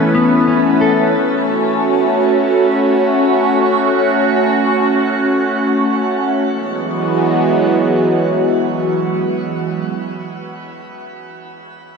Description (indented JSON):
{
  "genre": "dream pop",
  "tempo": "free time",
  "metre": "none",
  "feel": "none",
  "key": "E major",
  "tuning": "A4 = 440 Hz",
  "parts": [
    { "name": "phased analog pad", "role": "sustained chords", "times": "0.0-9.9 s", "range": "E3 to B4", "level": "-14 LUFS", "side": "right 1 dB", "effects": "phaser, chorus" },
    { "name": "mellow electric guitar", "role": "arpeggios", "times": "0.0-1.7 s", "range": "E3 to A4", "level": "-20 LUFS", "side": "left 3 dB", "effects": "wide subtle chorus, ping-pong delay" }
  ],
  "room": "moderate shimmer reverb, RT60 8.8 s",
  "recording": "dark, warm production",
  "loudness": "-12 LUFS",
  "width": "side -5 dB against mid",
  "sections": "0.0-6.5 A section; 6.5-9.1 B section",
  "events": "none",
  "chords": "0.0 Aadd9; 1.1 F#m; 6.5 Eadd9"
}